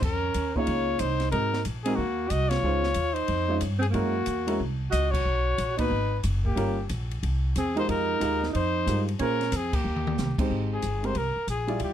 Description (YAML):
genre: jazz, small-group swing and bop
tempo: 183 BPM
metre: 4/4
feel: swing 64% on 8ths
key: Ab major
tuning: A4 = 440 Hz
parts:
  - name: warm trumpet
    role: melody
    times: 0.0-11.9 s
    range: Gb4 to Eb5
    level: -29 LUFS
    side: left 3 dB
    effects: none
  - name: mellow alto saxophone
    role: second line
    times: 0.0-10.4 s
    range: Bb3 to Gb4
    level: -31 LUFS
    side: right 5 dB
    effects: none
  - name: upright bass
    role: bass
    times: 0.0-11.9 s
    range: F#1 to Bb2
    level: -29 LUFS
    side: equal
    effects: none
  - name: open jazz drum kit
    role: drums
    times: 0.0-11.9 s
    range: crash cymbal, hi-hat, kick drum, ride cymbal, snare drum, toms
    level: -34 LUFS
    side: equal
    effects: none
  - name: dark upright piano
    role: accompaniment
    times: 0.6-11.9 s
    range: G3 to D5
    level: -30 LUFS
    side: right 1 dB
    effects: none
room: light reverb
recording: dark, warm production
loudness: -24 LUFS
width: side -10 dB against mid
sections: 0.0-10.5 A section; 10.5-11.9 B section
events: band accent 2.5, 5.1, 9.7; drum fill 9.8-10.2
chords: 0.0 Bbm11; 1.3 Ab9; 2.6 Dbmaj9; 3.9 Gb9; 5.2 Bmaj7; 6.6 Gm7b5; 7.2 C7alt; 7.9 Fm11; 9.2 Bbm9; 9.8 Eb6; 10.5 Abmaj9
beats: | 0.02 0.35 0.68 1.00 | 1.33 1.65 1.98 2.31 | 2.63 2.96 3.29 3.61 | 3.94 4.27 4.59 4.92 | 5.25 5.58 5.90 6.23 | 6.56 6.89 7.22 7.54 | 7.87 8.20 8.53 8.86 | 9.19 9.52 9.84 10.17 | 10.50 10.83 11.16 11.49 | 11.82